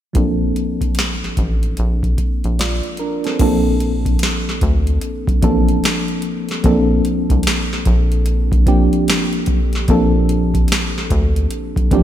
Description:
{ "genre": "R&B, neo-soul", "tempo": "74 BPM", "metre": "4/4", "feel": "swing 63% on 16ths", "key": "Bb major", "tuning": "A4 = 439 Hz", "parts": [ { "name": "mellow FM electric piano", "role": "accompaniment", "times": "0.1-12.0 s", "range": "F3 to D5", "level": "-18 LUFS", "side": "equal", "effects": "chorus, low-pass filter" }, { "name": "booming analog drum machine", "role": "drums", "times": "0.1-12.0 s", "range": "crash cymbal, hi-hat, kick drum, snare drum", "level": "-18 LUFS", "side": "equal", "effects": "none" }, { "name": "rubbery square bass", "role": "bass", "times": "0.2-12.0 s", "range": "A1 to D2", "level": "-18 LUFS", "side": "equal", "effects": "none" } ], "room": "light reverb", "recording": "bright 1980s-style digital production", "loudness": "-14 LUFS", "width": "side -11 dB against mid", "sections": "0.2-3.4 A section; 3.4-12.0 B section", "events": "filter sweep on FM electric piano 0.2-3.4", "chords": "0.2 Bbmaj9" }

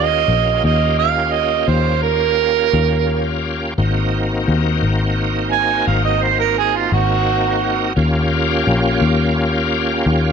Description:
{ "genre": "blues", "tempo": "57 BPM (dotted quarters)", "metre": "12/8", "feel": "straight", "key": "Eb mixolydian", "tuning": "A4 = 441 Hz", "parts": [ { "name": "mellow harmonica", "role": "second line", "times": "0.0-7.9 s", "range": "F4 to Ab5", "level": "-17 LUFS", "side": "right 13 dB", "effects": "overdrive" }, { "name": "bright tonewheel organ", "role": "sustained chords", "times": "0.0-10.3 s", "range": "Bb3 to G4", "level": "-20 LUFS", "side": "left 2 dB", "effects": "slow rotary speaker, chorus vibrato" }, { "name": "fingered electric bass", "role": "bass", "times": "0.0-10.3 s", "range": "Ab1 to Eb2", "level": "-19 LUFS", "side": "left 2 dB", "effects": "none" } ], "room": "light reverb, small room reverb", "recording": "none", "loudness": "-14 LUFS", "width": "side -6 dB against mid", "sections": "0.0-10.3 A section", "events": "harmonica solo 0.0-10.3", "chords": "0.0 Eb7; 3.8 Ab7; 8.0 Eb7" }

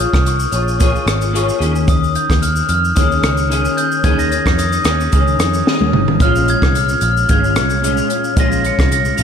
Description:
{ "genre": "indie pop, bedroom pop", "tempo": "111 BPM", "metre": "4/4", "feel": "swing 55% on 16ths", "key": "unclear", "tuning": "A4 = 440 Hz", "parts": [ { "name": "glockenspiel with rubber mallets", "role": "melody", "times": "0.0-9.2 s", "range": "Db6 to Db7", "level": "-18 LUFS", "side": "left 1 dB", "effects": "wide subtle chorus, tape echo" }, { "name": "semi-hollow electric guitar", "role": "accompaniment", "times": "0.0-9.2 s", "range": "Bb2 to Db5", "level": "-20 LUFS", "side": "left 2 dB", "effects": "ensemble chorus, warbly pitch drift" }, { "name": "vintage muted picked electric bass", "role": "bass", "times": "0.0-9.2 s", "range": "G1 to F2", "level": "-18 LUFS", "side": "equal", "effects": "none" }, { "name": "compact cocktail drum kit", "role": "drums", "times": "0.1-9.2 s", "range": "hi-hat, kick drum, rim click, shaker, snare drum, toms", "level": "-17 LUFS", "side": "equal", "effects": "none" } ], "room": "moderate scoring stage reverb, RT60 2.0 s, small room ambience", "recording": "big arena sound", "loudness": "-12 LUFS", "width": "side -7 dB against mid", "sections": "0.0-9.2 A section", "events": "drum fill 5.7-6.2", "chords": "0.0 Bbm7; 1.6 Eb7sus4; 6.2 Bbm7" }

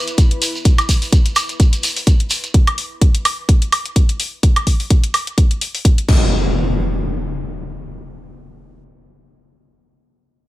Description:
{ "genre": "bass house", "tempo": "127 BPM", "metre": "4/4", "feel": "swing 56% on 16ths", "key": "unclear", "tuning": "A4 = 440 Hz", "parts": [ { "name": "granular cloud pad", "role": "texture", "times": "0.0-2.5 s", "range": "E4 to B5", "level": "-34 LUFS", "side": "left 1 dB", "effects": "built-in reverb, sidechain pumping" }, { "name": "house drum kit", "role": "drums", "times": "0.1-6.2 s", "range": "crash cymbal, hi-hat, woodblock", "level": "-19 LUFS", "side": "equal", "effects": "small room ambience" }, { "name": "shekere", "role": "percussion", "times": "0.1-2.5 s", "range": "none", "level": "-23 LUFS", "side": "right 2 dB", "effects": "none" }, { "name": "electronic kick drum", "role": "drums", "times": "0.2-6.2 s", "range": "none", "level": "-12 LUFS", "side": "equal", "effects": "small room ambience" }, { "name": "impact", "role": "sound effects", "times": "6.1-9.1 s", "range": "none", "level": "-19 LUFS", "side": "equal", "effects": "none" } ], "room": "little or no reverb", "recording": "none", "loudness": "-13 LUFS", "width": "side -16 dB against mid", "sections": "0.0-6.3 A section; 6.3-10.1 B section", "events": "fade-out on ambient pad 0.0-2.5", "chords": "0.0 E5; 6.1 N.C." }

